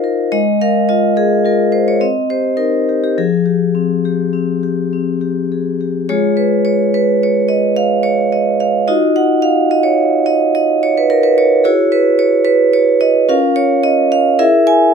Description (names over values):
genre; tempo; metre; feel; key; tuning
classical, contemporary piece for solo vibraphone; 107 BPM; 5/4; rubato; F minor, G# minor from 6.1 s; A4 = 441 Hz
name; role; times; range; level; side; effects
vibraphone with medium hard mallets; solo; 0.0-14.9 s; F3 to G#5; -11 LUFS; equal; none
room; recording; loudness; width
light reverb; close, detailed microphones; -11 LUFS; side -6 dB against mid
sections
0.0-6.1 A section; 6.1-14.9 B section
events
none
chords
0.3 Absus2; 2.0 Cm; 3.2 Fmadd9; 6.1 G#m6; 8.9 D#madd9; 11.6 Eadd9; 13.3 C#6; 14.4 E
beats
| 0.34 0.90 1.46 2.02 2.59 | 3.16 3.74 4.33 4.91 5.50 | 6.08 6.64 7.20 7.76 8.32 | 8.88 9.43 9.98 10.55 11.10 | 11.65 12.19 12.75 13.30 13.85 | 14.41